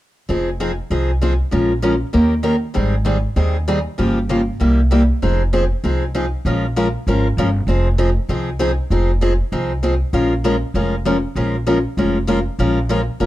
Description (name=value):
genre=acoustic string swing (jazz manouche)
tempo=195 BPM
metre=4/4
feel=swing 57% on 8ths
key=F minor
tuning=A4 = 440 Hz
part: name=picked steel-string acoustic guitar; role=accompaniment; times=0.3-13.3 s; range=C3 to Bb4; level=-18 LUFS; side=left 1 dB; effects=none
part: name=upright bass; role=bass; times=0.3-13.3 s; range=F1 to Eb2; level=-19 LUFS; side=equal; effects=none
room=moderate club reverb, RT60 0.8 s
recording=dark, warm production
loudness=-16 LUFS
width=side -15 dB against mid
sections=0.3-5.2 A section; 5.2-13.3 B section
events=none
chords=0.3 Fm7; 1.5 Bbm7; 2.1 Eb7; 2.8 Abmaj7; 4.0 Gm7b5; 4.6 C7; 5.2 Fm7; 6.5 Bbm7; 7.7 Fm7; 10.1 Bbm7